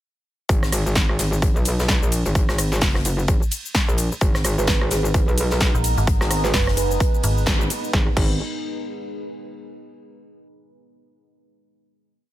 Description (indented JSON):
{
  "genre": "bass house",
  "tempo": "129 BPM",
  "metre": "4/4",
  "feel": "swing 58% on 16ths",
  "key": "G# minor",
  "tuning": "A4 = 437 Hz",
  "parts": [
    { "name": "metallic wobble bass", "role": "bass", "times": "0.5-8.4 s", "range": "F#1 to B1", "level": "-22 LUFS", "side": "equal", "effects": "chorus, overdrive, sidechain pumping" },
    { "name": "big-room dance drum kit", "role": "drums", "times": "0.5-8.3 s", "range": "crash cymbal, hi-hat, ride cymbal, rim click, shaker, snare drum", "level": "-25 LUFS", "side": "equal", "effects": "none" },
    { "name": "electronic kick drum", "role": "drums", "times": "0.5-8.3 s", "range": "none", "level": "-20 LUFS", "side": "equal", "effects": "overdrive" },
    { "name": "modern studio drum kit", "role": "drums", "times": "0.5-7.8 s", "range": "hi-hat, snare drum", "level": "-34 LUFS", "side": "left 3 dB", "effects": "high-pass filter on hats, high-pass filter on snare, high-pass filter on room" },
    { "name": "deep dark ambient pad", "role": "sustained chords", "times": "5.3-8.2 s", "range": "G#3 to B4", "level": "-30 LUFS", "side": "equal", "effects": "chorus, built-in reverb, sidechain pumping" },
    { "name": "kalimba", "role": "melody", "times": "4.6-7.0 s", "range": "G#4 to B4", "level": "-29 LUFS", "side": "right 8 dB", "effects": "dub echo" },
    { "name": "metallic FM bass", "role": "bass", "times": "5.7-7.5 s", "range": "F#1 to A#1", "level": "-21 LUFS", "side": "equal", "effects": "tube saturation, sidechain pumping" }
  ],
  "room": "small room ambience",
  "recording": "none",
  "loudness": "-18 LUFS",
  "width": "side -14 dB against mid",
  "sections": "0.5-7.9 drop; 7.9-9.8 final chord",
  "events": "drop 0.5-7.9; band accent 7.5",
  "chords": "0.5 G#madd9",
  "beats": "| 0.49 0.96 1.42 1.89 | 2.35 2.82 3.28 3.75 | 4.21 4.68 5.14 5.61 | 6.07 6.54 7.00 7.47 | 7.93"
}